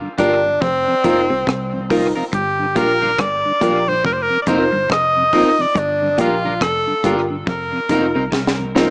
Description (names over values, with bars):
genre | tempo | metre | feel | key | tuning
roots reggae | 70 BPM | 4/4 | swing 60% on 16ths | unclear | A4 = 440 Hz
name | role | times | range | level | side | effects
mellow tonewheel organ | accompaniment | 0.0-8.9 s | F2 to F4 | -25 LUFS | equal | chorus vibrato, slow rotary speaker
breathy tenor saxophone | melody | 0.2-8.3 s | C4 to Eb5 | -17 LUFS | equal | tape echo
clean electric guitar | accompaniment | 0.2-8.9 s | C4 to Bb4 | -25 LUFS | equal | wide subtle chorus, tape echo
clean electric guitar | riff | 0.2-8.6 s | F2 to C3 | -26 LUFS | equal | none
warm concert grand piano | stabs | 0.2-8.9 s | Eb4 to Bb4 | -20 LUFS | equal | none
vintage muted fingered electric bass | bass | 0.2-8.9 s | F1 to C2 | -27 LUFS | equal | none
deep reggae drum kit | drums | 0.2-8.9 s | hi-hat, kick drum, rim click, snare drum | -22 LUFS | equal | tape echo
room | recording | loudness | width
light reverb, studio reverb | echo-heavy mix, small speaker sound | -14 LUFS | side -35 dB against mid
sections
0.0-8.9 A section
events
drum fill 8.3-8.9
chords
0.0 Gm7; 0.6 F7sus4; 2.3 Gm7; 4.0 F7sus4; 5.8 Gm7; 7.5 F7sus4